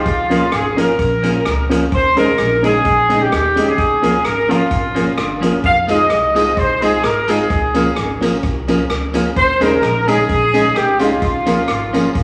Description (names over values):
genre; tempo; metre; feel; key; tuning
ska; 129 BPM; 4/4; swing 53% on 8ths; unclear; A4 = 442 Hz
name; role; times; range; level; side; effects
mellow horn section; melody; 0.0-12.2 s; F4 to F5; -18 LUFS; equal; none
upright bass; bass; 0.1-12.2 s; F1 to Eb2; -27 LUFS; equal; none
swinging big-band drum kit; drums; 0.1-12.2 s; hi-hat, kick drum, rim click; -26 LUFS; equal; none
clean electric guitar; accompaniment; 0.3-12.0 s; F3 to Ab4; -24 LUFS; equal; spring reverb
dark upright piano; stabs; 0.3-12.1 s; Db4 to Bb4; -22 LUFS; equal; none
tambourine; percussion; 5.9-12.0 s; none; -40 LUFS; equal; tape echo
room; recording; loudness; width
wet large studio reverb, RT60 1.2 s; vinyl crackle; -15 LUFS; mono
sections
0.0-12.2 A section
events
none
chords
0.1 Db6; 1.9 Eb7sus4; 3.8 Db6; 5.6 Fm7; 7.5 Db6; 9.4 Eb7sus4; 11.2 Db6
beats
| 0.06 0.52 0.99 1.46 | 1.92 2.38 2.85 3.31 | 3.78 4.25 4.71 5.17 | 5.64 6.11 6.57 7.04 | 7.50 7.96 8.43 8.89 | 9.36 9.83 10.29 10.76 | 11.22 11.69 12.15